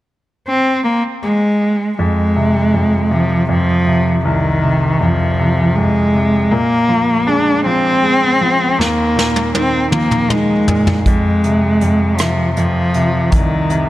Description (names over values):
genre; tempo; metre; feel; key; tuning
six-eight pop ballad; 53 BPM (dotted quarters); 6/8; straight; F minor; A4 = 440 Hz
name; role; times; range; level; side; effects
warm cello; melody; 0.5-13.9 s; Eb3 to D4; -14 LUFS; equal; tape echo
bright concert grand piano; accompaniment; 2.0-13.9 s; C2 to Ab3; -17 LUFS; equal; none
vintage brush drum kit; drums; 8.8-13.9 s; hi-hat, kick drum, rim click, snare drum, toms; -18 LUFS; equal; none
room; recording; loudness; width
light reverb, studio reverb; none; -12 LUFS; side -15 dB against mid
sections
0.0-2.0 A section; 2.0-13.9 B section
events
drum fill 8.8-11.1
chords
0.0 N.C.; 2.0 Fm; 6.5 Bb5; 8.8 Ebsus2; 11.1 Fm7